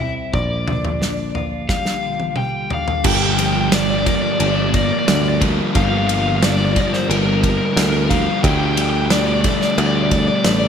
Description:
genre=post-rock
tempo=89 BPM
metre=4/4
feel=straight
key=G minor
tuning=A4 = 440 Hz
part: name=crunchy overdriven guitar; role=melody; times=0.0-10.7 s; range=Bb4 to G5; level=-22 LUFS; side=left 2 dB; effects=slapback echo
part: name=twelve-string electric guitar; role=arpeggios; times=0.0-10.7 s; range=G2 to A4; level=-26 LUFS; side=left 3 dB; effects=slapback echo
part: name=picked electric bass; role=bass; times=0.0-10.7 s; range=G1 to D2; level=-22 LUFS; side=right 1 dB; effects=none
part: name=loose indie drum kit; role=drums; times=0.0-10.6 s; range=crash cymbal, kick drum, ride cymbal, snare drum, toms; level=-21 LUFS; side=right 1 dB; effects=none
part: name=fuzz guitar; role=riff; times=3.0-10.7 s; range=G2 to D4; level=-20 LUFS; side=equal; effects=distortion, slapback echo
room=moderate lush hall reverb, RT60 2.0 s, studio ambience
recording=big arena sound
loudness=-15 LUFS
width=side -7 dB against mid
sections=0.0-3.0 A section; 3.0-10.7 B section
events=drum fill 1.7-3.0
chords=0.3 Gm7/Bb; 3.0 Gm7; 8.4 Dsus4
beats=| 0.34 1.02 1.70 2.37 | 3.05 3.73 4.40 5.07 | 5.75 6.42 7.09 7.77 | 8.44 9.11 9.78 10.45

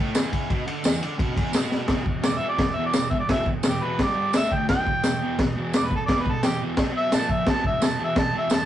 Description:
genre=garage rock duo or trio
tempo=172 BPM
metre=4/4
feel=straight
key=E minor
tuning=A4 = 440 Hz
part: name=fuzz guitar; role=riff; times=0.0-8.7 s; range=E2 to D4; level=-28 LUFS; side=right 1 dB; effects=distortion
part: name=crunchy breakbeat drum kit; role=drums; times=0.1-8.6 s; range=crash cymbal, kick drum, ride cymbal, snare drum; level=-24 LUFS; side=equal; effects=none
part: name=tambourine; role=percussion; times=0.1-8.6 s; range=none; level=-35 LUFS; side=right 4 dB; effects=none
part: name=mellow harmonica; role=melody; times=2.3-8.7 s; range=G4 to A5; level=-25 LUFS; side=right 1 dB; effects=overdrive
room=moderate small room reverb, RT60 0.5 s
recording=rough rehearsal-room recording, warm saturation, nothing above 10.8 kHz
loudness=-21 LUFS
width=side -12 dB against mid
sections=0.0-1.9 A section; 1.9-8.7 B section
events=drum fill 1.7; harmonica solo 1.9-8.7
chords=0.0 E5; 4.0 G5; 4.3 D5; 4.7 Em; 6.8 B5; 7.1 A#5; 7.5 E5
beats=0.15 | 0.50 0.85 1.20 1.55 | 1.90 2.25 2.60 2.95 | 3.30 3.65 4.00 4.34 | 4.69 5.04 5.39 5.74 | 6.09 6.43 6.78 7.13 | 7.48 7.83 8.17 8.52

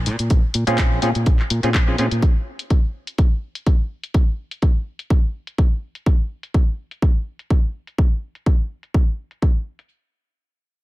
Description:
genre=filtered disco house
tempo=125 BPM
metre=4/4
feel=swing 54% on 16ths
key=unclear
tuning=A4 = 436 Hz
part: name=modern bright fingered electric bass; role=bass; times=0.0-2.2 s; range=Bb1 to Bb2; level=-21 LUFS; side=equal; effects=tube saturation, sidechain pumping, low-pass filter
part: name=house drum kit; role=drums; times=0.1-9.9 s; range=handclaps, hi-hat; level=-27 LUFS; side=left 2 dB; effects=low-pass filter on hats, low-pass filter on snare, low-pass filter on room
part: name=electronic kick drum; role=drums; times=0.3-9.5 s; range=none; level=-16 LUFS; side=equal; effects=none
part: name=overdriven clav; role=accompaniment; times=0.7-2.1 s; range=C4 to Ab4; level=-24 LUFS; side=equal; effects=phaser, vintage 12-bit sampler grit, sidechain pumping, low-pass filter
room=little or no reverb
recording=none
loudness=-18 LUFS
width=side -18 dB against mid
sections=0.0-9.9 A section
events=none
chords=0.0 Bbm7; 2.2 N.C.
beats=| 0.30 0.78 1.26 1.74 | 2.22 2.70 3.18 3.66 | 4.14 4.62 5.10 5.58 | 6.06 6.54 7.02 7.50 | 7.98 8.46 8.94 9.42

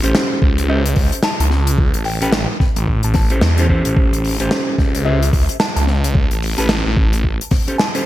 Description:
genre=glitch hop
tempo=110 BPM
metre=4/4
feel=swing 60% on 16ths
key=unclear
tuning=A4 = 440 Hz
part: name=clean electric guitar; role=stabs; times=0.0-8.0 s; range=C#4 to B#4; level=-22 LUFS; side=equal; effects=sidechain pumping, digital delay
part: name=phased detuned saw bass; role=bass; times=0.0-7.4 s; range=A1 to E2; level=-17 LUFS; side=equal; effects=phaser
part: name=gated 80s drum kit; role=drums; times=0.0-8.0 s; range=hi-hat, snare drum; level=-21 LUFS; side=left 1 dB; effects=gated reverb
part: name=electronic kick drum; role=drums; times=0.4-7.6 s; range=none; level=-16 LUFS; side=equal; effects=none
part: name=woody wave-folded pluck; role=melody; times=0.7-8.0 s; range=E5 to A5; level=-27 LUFS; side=left 1 dB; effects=chorus, cassette tape, digital delay
room=small room ambience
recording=bright 1980s-style digital production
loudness=-14 LUFS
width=side -14 dB against mid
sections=0.0-8.1 A section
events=none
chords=0.0 A7#9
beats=0.15 0.69 1.24 | 1.78 2.33 2.88 3.42 | 3.97 4.51 5.06 5.60 | 6.15 6.69 7.24 7.78

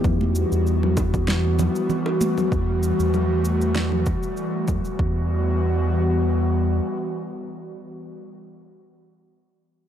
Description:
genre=organic downtempo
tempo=97 BPM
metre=4/4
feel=swing 54% on 16ths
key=E minor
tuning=A4 = 445 Hz
part: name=round analog bass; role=bass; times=0.0-6.8 s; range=E2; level=-22 LUFS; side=equal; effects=tube saturation
part: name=electronic congas, shaker and snare drum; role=drums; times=0.0-5.0 s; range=none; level=-28 LUFS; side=left 2 dB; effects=overdrive
part: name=electronic kick drum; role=drums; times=0.0-5.1 s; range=none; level=-26 LUFS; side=equal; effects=overdrive
part: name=airy breathy pad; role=sustained chords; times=0.1-8.2 s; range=E3 to F#4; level=-24 LUFS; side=equal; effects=chorus, sidechain pumping
part: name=congas and bongos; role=percussion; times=0.2-2.3 s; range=none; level=-28 LUFS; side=right 4 dB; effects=none
room=digital ambience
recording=dry, gritty hardware recording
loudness=-20 LUFS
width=side -10 dB against mid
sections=0.0-5.0 A section; 5.0-7.5 B section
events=none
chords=0.0 Emadd9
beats=| 0.04 0.66 1.28 1.90 | 2.52 3.13 3.75 4.37 | 4.99 5.61 6.23 6.85

